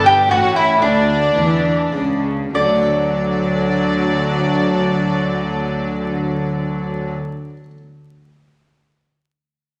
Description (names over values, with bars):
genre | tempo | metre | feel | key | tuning
classical, baroque-style concerto movement with solo episodes | 94-124 BPM | 3/4 | straight | D major | A4 = 439 Hz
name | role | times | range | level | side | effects
mandolin | melody | 0.0-7.5 s | D4 to D5 | -18 LUFS | equal | none
warm studio violin section | melody | 0.0-7.1 s | D5 to G5 | -28 LUFS | equal | none
rich chamber violin section | second line | 0.0-7.1 s | D4 to G4 | -27 LUFS | equal | none
harpsichord | accompaniment | 0.0-7.8 s | G2 to A4 | -30 LUFS | equal | none
rich chamber viola section | accompaniment | 0.0-7.1 s | F#3 to D4 | -25 LUFS | equal | none
rich chamber double bass section | bass | 0.0-7.1 s | G1 to E2 | -26 LUFS | equal | none
warm studio cello section | bass | 0.0-7.1 s | G2 to E3 | -26 LUFS | equal | none
room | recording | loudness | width
wet recital hall reverb, RT60 1.6 s | vinyl crackle | -18 LUFS | mono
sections
0.0-2.5 A section; 2.5-6.3 B section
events
slowing down 0.0-2.5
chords
0.3 A; 0.8 D5; 2.5 D